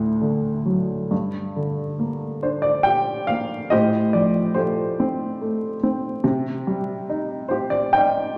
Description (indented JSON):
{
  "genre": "classical, lyrical solo piano",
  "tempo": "70 BPM",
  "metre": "3/4",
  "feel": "rubato",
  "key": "G minor",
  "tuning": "A4 = 439 Hz",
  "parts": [
    { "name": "warm upright piano", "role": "solo", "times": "0.0-8.4 s", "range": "D2 to G5", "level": "-22 LUFS", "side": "equal", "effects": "none" }
  ],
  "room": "wet recital hall reverb, RT60 1.4 s",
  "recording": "vinyl crackle",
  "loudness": "-22 LUFS",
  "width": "mono",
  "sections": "0.0-8.4 A section",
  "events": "none",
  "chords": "0.0 D; 1.1 Gm; 3.7 Fadd9/A; 6.2 Cmadd9",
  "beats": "0.21 | 1.12 1.99 2.86 | 3.72 4.56 5.39 | 6.23 7.08 7.93"
}